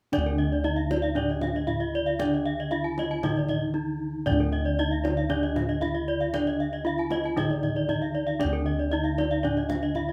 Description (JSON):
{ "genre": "Balinese gamelan", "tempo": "116 BPM", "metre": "4/4", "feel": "straight", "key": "unclear", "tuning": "A4 = 439 Hz", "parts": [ { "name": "gamelan-type bronze metallophone", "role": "melody", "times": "0.1-10.1 s", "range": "D4 to E4+50c", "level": "-32 LUFS", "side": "equal", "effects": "none" }, { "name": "gamelan-type bronze metallophone", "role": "accompaniment", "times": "0.1-10.1 s", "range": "D3 to Eb3", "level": "-38 LUFS", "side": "equal", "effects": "none" }, { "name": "gamelan-type bronze metallophone", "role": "arpeggios", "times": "0.1-10.1 s", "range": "D5 to A5-45c", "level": "-35 LUFS", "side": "equal", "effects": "none" }, { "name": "gamelan-type bossed gongs", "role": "bass", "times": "0.1-10.1 s", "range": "D2 to Eb4", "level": "-32 LUFS", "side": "equal", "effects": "none" }, { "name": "kendang", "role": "percussion", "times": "0.1-10.1 s", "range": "none", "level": "-37 LUFS", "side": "equal", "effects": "none" }, { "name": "gamelan-type bronze metallophone", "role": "arpeggios", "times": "0.3-10.0 s", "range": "Bb4-40c to Eb5", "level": "-35 LUFS", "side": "equal", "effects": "none" } ], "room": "light reverb", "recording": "band playing live in one room", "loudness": "-27 LUFS", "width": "mono", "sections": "0.1-10.1 A section", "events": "break 3.5-4.3", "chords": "none", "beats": "| 0.13 0.64 1.16 1.68 | 2.19 2.71 3.23 3.75 | 4.26 4.78 5.30 5.82 | 6.33 6.85 7.37 7.88 | 8.40 8.92 9.44 9.95" }